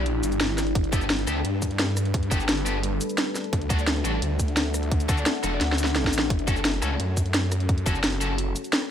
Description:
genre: dark technical drum and bass.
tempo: 173 BPM.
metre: 4/4.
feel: straight.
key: F# phrygian.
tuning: A4 = 440 Hz.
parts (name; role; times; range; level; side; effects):
deep dark ambient pad; sustained chords; 0.0-8.9 s; G3 to F#5; -30 LUFS; left 2 dB; chorus, built-in reverb, sidechain pumping.
snarling distorted saw bass; bass; 0.0-8.5 s; E1 to G2; -27 LUFS; equal; distortion, overdrive, sidechain pumping.
drum and bass drum kit; drums; 0.1-8.9 s; cabasa, hi-hat, rim click, snare drum; -26 LUFS; equal; studio reverb.
electronic kick drum; drums; 0.8-7.9 s; none; -25 LUFS; equal; overdrive, studio reverb.
heavy high-gain guitar; stabs; 0.9-8.3 s; B3 to A4; -32 LUFS; left 2 dB; distortion, dub echo.
room: light reverb.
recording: none.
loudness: -22 LUFS.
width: side -9 dB against mid.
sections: 0.0-8.9 A section.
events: drum fill 5.6-6.3.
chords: 0.0 Em7; 0.8 Gadd9; 3.5 D; 6.3 F#m.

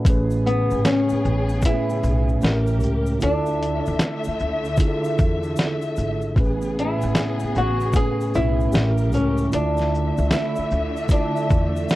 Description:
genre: lo-fi hip hop.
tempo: 76 BPM.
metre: 4/4.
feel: swing 66% on 16ths.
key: A major.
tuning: A4 = 441 Hz.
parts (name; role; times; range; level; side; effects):
mellow tine electric piano; accompaniment; 0.0-12.0 s; A2 to D5; -24 LUFS; right 1 dB; slow stereo tremolo, low-pass filter, plate reverb.
warm studio string section; sustained chords; 0.0-12.0 s; C#3 to E5; -29 LUFS; left 1 dB; low-pass filter, plate reverb.
upright bass; bass; 0.1-11.8 s; G#1 to E2; -24 LUFS; equal; none.
boom bap sampler-style drum kit; drums; 0.1-12.0 s; hi-hat, kick drum, shaker, snare drum; -20 LUFS; equal; none.
egg shaker; percussion; 0.1-12.0 s; none; -48 LUFS; left 4 dB; none.
flamenco guitar; melody; 0.5-12.0 s; B3 to G#4; -25 LUFS; left 1 dB; low-pass filter, tape echo, plate reverb.
room: light reverb.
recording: worn, warbling old tape, cassette tape, warbly pitch drift.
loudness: -19 LUFS.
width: side -16 dB against mid.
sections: 0.0-12.0 A section.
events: none.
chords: 0.0 Amaj9; 2.4 A7b9; 3.2 Dmadd9; 6.4 Amaj9; 8.7 A7b9; 9.5 Dmadd9.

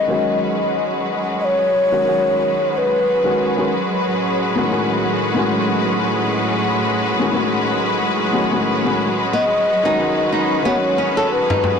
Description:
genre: organic downtempo.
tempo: 91 BPM.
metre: 4/4.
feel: swing 57% on 16ths.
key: B mixolydian.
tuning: A4 = 440 Hz.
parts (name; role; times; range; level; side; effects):
mellow hollow bass bansuri; melody; 0.0-3.7, 9.3-11.8 s; B4 to D#5; -19 LUFS; left 1 dB; ping-pong delay.
felt-muted upright piano; accompaniment; 0.0-11.8 s; A2 to F#4; -22 LUFS; left 3 dB; low-pass filter, tape echo.
rich studio string section; sustained chords; 0.0-11.8 s; A2 to B4; -20 LUFS; right 1 dB; none.
flamenco guitar; arpeggios; 9.3-11.6 s; B3 to A4; -22 LUFS; right 1 dB; tape echo.
frame drum; percussion; 11.5-11.8 s; none; -20 LUFS; left 1 dB; none.
room: moderate huge ambient reverb, RT60 6.7 s.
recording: blown-out, overdriven recording, overdrive.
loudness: -16 LUFS.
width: side -6 dB against mid.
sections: 0.0-11.8 A section.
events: filter sweep on felt piano 0.0-11.8.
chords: 0.0 B; 4.1 Aadd9; 9.3 B.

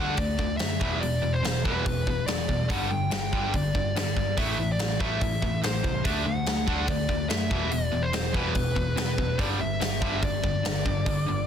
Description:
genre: hard rock.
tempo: 143 BPM.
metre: 4/4.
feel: straight.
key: unclear.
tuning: A4 = 440 Hz.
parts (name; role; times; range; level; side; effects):
dark smooth lead guitar; melody; 0.0-11.5 s; B4 to G5; -31 LUFS; left 1 dB; overdrive.
distorted electric guitar; riff; 0.0-11.5 s; E2 to D4; -32 LUFS; right 10 dB; overdrive.
overdriven electric guitar; riff; 0.0-11.5 s; E2 to D4; -32 LUFS; left 10 dB; none.
overdriven picked electric bass; bass; 0.0-11.5 s; E1 to F#2; -31 LUFS; equal; none.
big rock drum kit; drums; 0.2-11.2 s; hi-hat, kick drum, snare drum; -30 LUFS; equal; soft clipping on kick.
room: light reverb, small room ambience.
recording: dense, heavily limited modern master.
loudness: -24 LUFS.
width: side -8 dB against mid.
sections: 0.0-11.5 A section.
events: none.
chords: 0.0 D; 0.8 E5; 2.7 G5; 4.4 Am; 6.0 D; 7.5 E5; 9.4 G5.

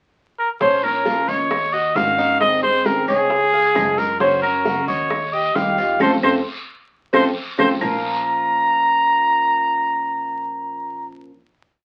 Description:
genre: latin, Cuban son and guajira.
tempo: 133 BPM.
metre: 4/4.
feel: straight.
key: Bb minor.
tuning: A4 = 440 Hz.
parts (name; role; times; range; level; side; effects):
clear trumpet; melody; 0.4-11.1 s; Ab4 to Bb5; -20 LUFS; equal; none.
picked steel-string acoustic guitar; accompaniment; 0.6-11.3 s; Bb2 to Ab4; -28 LUFS; equal; none.
Cuban tres; arpeggios; 0.6-11.1 s; Bb3 to F5; -27 LUFS; equal; none.
upright bass; bass; 0.6-11.1 s; Ab1 to Gb2; -37 LUFS; equal; none.
bongos; percussion; 0.6-7.9 s; none; -27 LUFS; equal; none.
guiro; percussion; 0.6-7.9 s; none; -39 LUFS; equal; none.
claves; percussion; 0.8-7.9 s; none; -31 LUFS; equal; none.
room: wet studio ambience, RT60 0.5 s.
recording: very old 78 rpm record, vinyl crackle.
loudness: -19 LUFS.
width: mono.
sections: 0.0-0.6 pickup bar; 0.6-7.8 verse; 7.8-11.4 final chord.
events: band accent 6.0-7.8; drum fill 7.1-7.8.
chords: 0.0 N.C.; 0.6 Bbm; 1.5 Ebm7; 2.4 Ab; 3.3 Db; 4.2 Gb; 5.1 Eb; 6.0 F; 7.8 Bbm.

